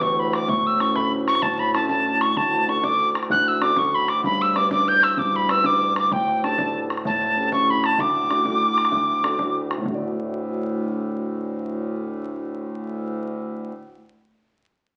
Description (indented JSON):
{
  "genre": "celtic folk, Celtic slide",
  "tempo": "128 BPM (dotted quarters)",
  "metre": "12/8",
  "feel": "straight",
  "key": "D major",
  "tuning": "A4 = 440 Hz",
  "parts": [
    { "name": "wooden whistle", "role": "melody", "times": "0.0-9.6 s", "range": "G5 to G6", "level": "-22 LUFS", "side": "equal", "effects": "none" },
    { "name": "dark grand piano", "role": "accompaniment", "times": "0.0-13.8 s", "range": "D2 to D5", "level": "-30 LUFS", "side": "equal", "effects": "none" },
    { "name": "hand-pumped harmonium", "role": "drone", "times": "0.0-13.7 s", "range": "D2 to A2", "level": "-31 LUFS", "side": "equal", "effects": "none" },
    { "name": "bodhran", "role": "percussion", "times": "0.0-10.0 s", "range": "none", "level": "-33 LUFS", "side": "equal", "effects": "none" }
  ],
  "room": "wet large studio reverb, RT60 1.1 s",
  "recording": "very old 78 rpm record, vinyl crackle, nothing above 11.0 kHz",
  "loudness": "-22 LUFS",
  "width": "mono",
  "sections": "0.0-9.9 A section; 9.9-13.6 B section",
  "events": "none",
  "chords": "0.5 A; 2.4 D; 4.2 G; 6.1 A7sus4; 7.1 A7; 8.0 D",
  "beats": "0.02 | 0.49 0.96 1.43 1.89 | 2.36 2.83 3.30 3.77 | 4.24 4.71 5.18 5.65 | 6.12 6.58 7.05 7.52 | 7.99 8.46 8.92 9.39 | 9.86 10.32 10.79 11.26 | 11.72 12.19 12.65 13.12"
}